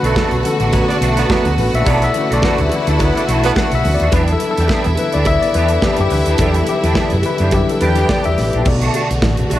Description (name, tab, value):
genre	disco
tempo	106 BPM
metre	4/4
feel	swing 56% on 16ths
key	B minor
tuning	A4 = 439 Hz
part	clear studio violin section	second line	0.0-8.6 s	E4 to G5	-23 LUFS	equal	none
part	clean electric guitar	accompaniment	0.0-9.6 s	A3 to G4	-24 LUFS	right 4 dB	ensemble chorus
part	mellow tine electric piano	accompaniment	0.0-9.6 s	B2 to F#5	-19 LUFS	left 4 dB	overdrive, medium stereo tremolo
part	clear studio string section	sustained chords	0.0-9.6 s	D3 to F#4	-22 LUFS	equal	none
part	clear horn section	stabs	0.0-3.5 s	F#3 to D5	-22 LUFS	right 5 dB	slapback echo
part	fingered electric bass with an envelope filter	bass	0.0-9.6 s	A1 to F#2	-17 LUFS	equal	none
part	modern studio drum kit	drums	0.0-9.6 s	crash cymbal, hi-hat, kick drum, snare drum	-20 LUFS	right 1 dB	none
part	congas	percussion	0.2-9.6 s	none	-28 LUFS	left 3 dB	none
part	cowbell	percussion	0.2-9.6 s	none	-30 LUFS	right 4 dB	none
room	light reverb, small room ambience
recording	none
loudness	-13 LUFS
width	side -13 dB against mid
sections	0.0-8.7 A section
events	tine electric piano solo 0.0-8.7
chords	0.0 Bm7; 4.1 Em7; 8.7 Bm7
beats	0.16 0.73 1.30 | 1.86 2.43 3.00 3.56 | 4.13 4.70 5.26 5.83 | 6.40 6.96 7.53 8.10 | 8.66 9.23